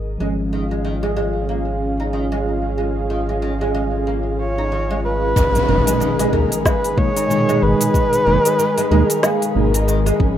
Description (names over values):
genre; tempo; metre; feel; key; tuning
organic downtempo; 93 BPM; 4/4; swing 58% on 16ths; G# dorian; A4 = 437 Hz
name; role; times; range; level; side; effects
mellow tine electric piano; accompaniment; 0.0-10.4 s; A#2 to D#4; -24 LUFS; right 2 dB; medium stereo tremolo, sidechain pumping, tape echo, shimmer reverb
warm analog pad; sustained chords; 0.0-10.4 s; D#3 to E#5; -24 LUFS; equal; chorus, sidechain pumping, shimmer reverb
round analog bass; bass; 0.0-10.4 s; F#1 to D#2; -22 LUFS; equal; sidechain pumping
oud; arpeggios; 0.2-10.4 s; D#3 to D#4; -25 LUFS; right 1 dB; tape echo, shimmer reverb
dark kamancheh; melody; 4.4-10.2 s; G#4 to C#5; -19 LUFS; equal; tape echo, shimmer reverb
electronic kick drum; drums; 5.4-10.3 s; none; -19 LUFS; equal; overdrive
organic electronic drum kit; drums; 5.4-10.2 s; cabasa, hi-hat, snare drum; -22 LUFS; equal; overdrive, low-pass filter on perc, low-pass filter on hats, low-pass filter on snare
impact; sound effects; 5.4-7.9 s; none; -23 LUFS; left 1 dB; none
room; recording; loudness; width
light reverb; rough home demo mix; -16 LUFS; side -10 dB against mid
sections
0.0-5.4 A section; 5.4-10.4 B section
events
impact 5.4-7.9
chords
0.2 C#/G#; 5.4 G#madd9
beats
| 0.20 0.85 1.49 2.14 | 2.78 3.43 4.07 4.72 | 5.36 6.01 6.65 7.30 | 7.94 8.59 9.23 9.88